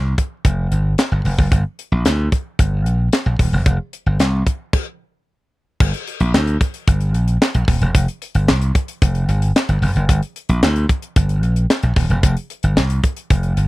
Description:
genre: early-eighties boogie funk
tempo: 112 BPM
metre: 4/4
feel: straight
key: G minor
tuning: A4 = 444 Hz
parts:
  - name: slap bass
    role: bass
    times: 0.0-13.7 s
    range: Eb1 to D2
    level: -16 LUFS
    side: equal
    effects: none
  - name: tight funk drum kit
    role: drums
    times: 0.2-13.7 s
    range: crash cymbal, handclaps, hi-hat, kick drum, snare drum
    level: -17 LUFS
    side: equal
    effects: none
room: little or no reverb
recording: dry, close 1970s-style studio recording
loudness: -15 LUFS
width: side -19 dB against mid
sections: 0.0-5.8 A section; 5.8-13.7 B section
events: stop 4.7-5.8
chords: none

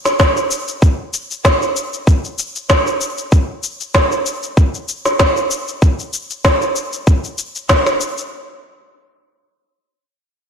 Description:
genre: organic downtempo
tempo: 96 BPM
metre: 4/4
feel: swing 55% on 16ths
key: none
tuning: none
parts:
  - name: electronic snare drum and shaker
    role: drums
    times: 0.1-8.3 s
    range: none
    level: -17 LUFS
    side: equal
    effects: overdrive
  - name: electronic kick drum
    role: drums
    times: 0.2-7.8 s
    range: none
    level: -13 LUFS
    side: equal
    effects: overdrive
room: moderate echo chamber reverb, RT60 1.8 s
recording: blown-out, overdriven recording, overdrive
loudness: -14 LUFS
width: side -7 dB against mid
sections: 0.0-8.3 A section; 8.3-10.5 B section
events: none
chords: none

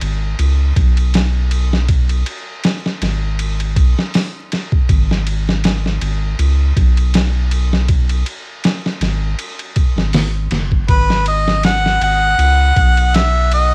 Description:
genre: trip hop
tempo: 80 BPM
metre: 4/4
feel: swing 55% on 16ths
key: G# minor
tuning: A4 = 440 Hz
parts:
  - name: round analog bass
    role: bass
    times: 0.0-13.7 s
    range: F#1 to C#2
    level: -18 LUFS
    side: equal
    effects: none
  - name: boom bap sampler-style drum kit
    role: drums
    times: 0.0-13.7 s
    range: hi-hat, kick drum, ride cymbal, snare drum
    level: -20 LUFS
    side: equal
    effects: cassette tape
  - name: clear harmonica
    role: melody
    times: 10.9-13.7 s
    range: B4 to F#5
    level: -17 LUFS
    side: equal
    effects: vintage 12-bit sampler grit, cassette tape, dub echo
room: little or no reverb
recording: home recording on cassette, vinyl crackle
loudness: -16 LUFS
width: mono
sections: 0.0-13.7 A section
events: none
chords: 0.0 G#m; 4.9 N.C.; 10.9 B5/G#

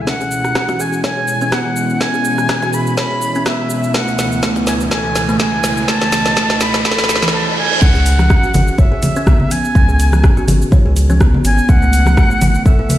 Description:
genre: afro house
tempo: 124 BPM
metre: 4/4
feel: swing 55% on 16ths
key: C# minor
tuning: A4 = 440 Hz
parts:
  - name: bright reedy silver concert flute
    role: melody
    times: 0.0-13.0 s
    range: E5 to B5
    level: -19 LUFS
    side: equal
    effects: ping-pong delay
  - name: warm analog pad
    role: sustained chords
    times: 0.0-7.3 s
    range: C#2 to D#5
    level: -22 LUFS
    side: equal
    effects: chorus, sidechain pumping
  - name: buzzing kalimba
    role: arpeggios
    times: 0.1-12.9 s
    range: E3 to C#5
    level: -20 LUFS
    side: equal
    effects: sidechain pumping, ping-pong delay
  - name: afro-pop drum kit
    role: drums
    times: 0.1-13.0 s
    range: crash cymbal, hi-hat, rim click, shaker, snare drum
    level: -20 LUFS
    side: equal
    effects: high-pass filter on perc, low-pass filter on perc, high-pass filter on snare, low-pass filter on snare, high-pass filter on cymbals, low-pass filter on cymbals, high-pass filter on hats, low-pass filter on hats
  - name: electronic kick drum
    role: drums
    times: 0.1-12.8 s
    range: none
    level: -12 LUFS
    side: equal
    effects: high-pass filter on kick
  - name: riser and reverse cymbal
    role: sound effects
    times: 1.9-7.8 s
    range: none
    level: -24 LUFS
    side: right 2 dB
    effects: none
  - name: round analog bass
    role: bass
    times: 7.8-12.7 s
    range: G#1 to C#2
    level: -13 LUFS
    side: equal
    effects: tube saturation, sidechain pumping
  - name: congas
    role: percussion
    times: 8.2-13.0 s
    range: none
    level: -18 LUFS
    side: left 1 dB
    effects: none
room: light reverb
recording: played on a big sound system in a bare room, stone room reverb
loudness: -12 LUFS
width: side -13 dB against mid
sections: 0.1-7.8 A section; 7.8-13.0 B section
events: build-up 0.1-7.8; drum fill 0.1-7.3; riser 1.9-7.8; reverse cymbal 6.8-7.8; drop 7.8-13.0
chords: 0.1 C#m7; 3.9 Aadd9/C#; 7.8 C#5; 11.7 A

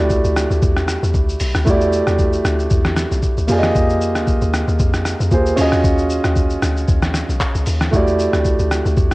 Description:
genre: amapiano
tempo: 115 BPM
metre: 4/4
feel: swing 55% on 16ths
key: unclear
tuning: A4 = 440 Hz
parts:
  - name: dark grand piano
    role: accompaniment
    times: 0.0-9.1 s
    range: A3 to Eb5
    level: -18 LUFS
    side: right 1 dB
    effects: none
  - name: deep log drum bass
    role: bass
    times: 0.0-9.1 s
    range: B1 to F2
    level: -19 LUFS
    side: equal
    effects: none
  - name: lo-fi sampler-style drum kit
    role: drums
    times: 0.1-9.1 s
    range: handclaps, hi-hat, kick drum, rim click, shaker, snare drum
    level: -19 LUFS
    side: equal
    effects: none
room: little or no reverb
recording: home recording on cassette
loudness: -14 LUFS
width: side -22 dB against mid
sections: 0.0-9.1 A section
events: none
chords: 0.0 Em11; 3.5 Fm11; 5.6 D#m11; 7.9 Em11

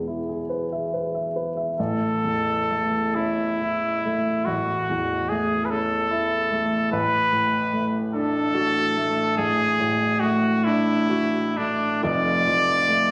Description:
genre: classical, romantic duo for trumpet and grand piano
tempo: 42-50 BPM (dotted quarters)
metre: 12/8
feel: rubato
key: A major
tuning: A4 = 442 Hz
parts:
  - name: dark baby grand piano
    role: accompaniment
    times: 0.0-13.1 s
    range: F1 to E5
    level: -27 LUFS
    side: equal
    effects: none
  - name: clear trumpet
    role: melody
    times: 1.8-13.1 s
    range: D4 to D5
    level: -25 LUFS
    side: equal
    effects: none
room: moderate recital hall reverb, RT60 1.6 s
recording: recorded on a phone in the room, studio reverb, compression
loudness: -23 LUFS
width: mono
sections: 0.0-1.8 A section; 1.8-13.1 B section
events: none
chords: 0.0 E; 1.8 A; 6.9 D/A; 12.0 Dm/F

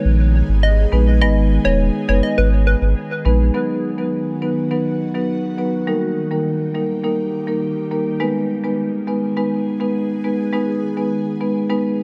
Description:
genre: dancehall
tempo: 103 BPM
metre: 4/4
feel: straight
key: G# minor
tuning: A4 = 437 Hz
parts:
  - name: hollow square pluck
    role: melody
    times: 0.0-2.8 s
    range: B4 to D#5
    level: -25 LUFS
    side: equal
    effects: chorus, dub echo
  - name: ethereal airy pad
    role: sustained chords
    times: 0.0-12.0 s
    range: D#3 to G#4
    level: -30 LUFS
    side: equal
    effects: ensemble chorus, built-in reverb, phaser
  - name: warm sub bass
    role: bass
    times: 0.0-3.5 s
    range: E1 to A#1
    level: -17 LUFS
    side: equal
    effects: none
  - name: marimba with medium mallets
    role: accompaniment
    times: 0.9-11.8 s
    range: F#3 to B4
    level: -22 LUFS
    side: equal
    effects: none
room: moderate plate reverb, RT60 2.6 s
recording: echo-heavy mix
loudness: -19 LUFS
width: mono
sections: 0.0-3.5 A section; 3.5-12.0 B section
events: none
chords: 0.0 G#m; 3.5 B; 5.9 D#; 8.2 G#m

